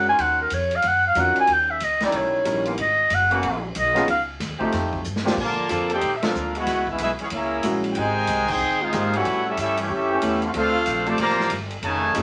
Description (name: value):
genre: jazz, big band swing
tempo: 186 BPM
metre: 4/4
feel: swing 64% on 8ths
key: unclear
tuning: A4 = 440 Hz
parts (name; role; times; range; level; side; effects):
- breathy clarinet; melody; 0.0-4.2 s; A#4 to G#5; -21 LUFS; equal; none
- warm grand piano; accompaniment; 0.0-12.2 s; F#3 to A#4; -28 LUFS; equal; none
- upright bass; bass; 0.0-12.2 s; F1 to Bb2; -34 LUFS; equal; none
- mellow trombone section; sustained chords; 0.1-6.0, 9.1-10.5 s; C#3 to C5; -30 LUFS; equal; none
- swinging big-band drum kit; drums; 0.2-12.2 s; crash cymbal, hi-hat, kick drum, ride cymbal, snare drum; -34 LUFS; equal; none
- clear trumpet section; melody; 5.4-12.2 s; A3 to Bb5; -26 LUFS; equal; none
- brilliant trombone section; second line; 5.4-12.2 s; C3 to Ab4; -29 LUFS; equal; none
room: wet studio reverb, RT60 0.5 s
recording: none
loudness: -22 LUFS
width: mono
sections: 0.0-5.4 A section; 5.4-12.2 B section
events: clarinet solo 0.0-5.4; drum fill 5.0-5.4; band accent 6.2, 8.4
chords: 0.2 D#m9; 1.5 D#7b9; 2.8 G#m11; 4.1 C#add9; 4.7 F9; 5.4 Bbmaj7; 6.7 Dbm7; 7.3 Gb9; 8.0 Abmaj7; 9.2 A7; 10.5 Dm7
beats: | 0.20 0.52 0.84 1.17 | 1.49 1.81 2.14 2.46 | 2.78 3.11 3.43 3.75 | 4.08 4.40 4.72 5.05 | 5.37 5.69 6.02 6.34 | 6.66 6.99 7.31 7.63 | 7.96 8.28 8.60 8.92 | 9.25 9.57 9.89 10.22 | 10.54 10.86 11.18 11.51 | 11.83 12.15